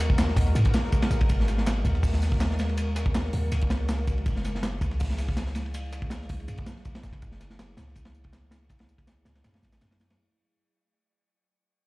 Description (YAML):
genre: drum and bass, jungle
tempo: 162 BPM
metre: 4/4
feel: straight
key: unclear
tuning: A4 = 440 Hz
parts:
  - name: warbly tape-like pad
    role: sustained chords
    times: 0.0-10.2 s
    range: F#3 to A#4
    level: -36 LUFS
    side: left 1 dB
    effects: chorus, built-in reverb
  - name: warm 808-style bass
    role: bass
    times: 0.0-10.2 s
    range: F#1 to G#2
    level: -27 LUFS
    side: equal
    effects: none
  - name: breakbeat sampler-style drum kit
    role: drums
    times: 0.0-10.2 s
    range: hi-hat, snare drum, tambourine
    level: -43 LUFS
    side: right 1 dB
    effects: high-pass filter on snare, high-pass filter on perc, high-pass filter on hats, high-pass filter on room
  - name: crunchy breakbeat drum kit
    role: drums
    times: 0.0-10.2 s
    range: hi-hat, kick drum, ride cymbal, snare drum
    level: -27 LUFS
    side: equal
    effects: none
room: light reverb, small room reverb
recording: played on a big sound system in a bare room, large studio reverb, vinyl crackle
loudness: -24 LUFS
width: side -21 dB against mid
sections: 0.0-10.2 A section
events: fade-out 0.0-10.2; filter sweep on 808-style bass 0.0-10.2; filter sweep on ambient pad 0.0-10.2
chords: 0.0 G#m9; 4.3 F#m9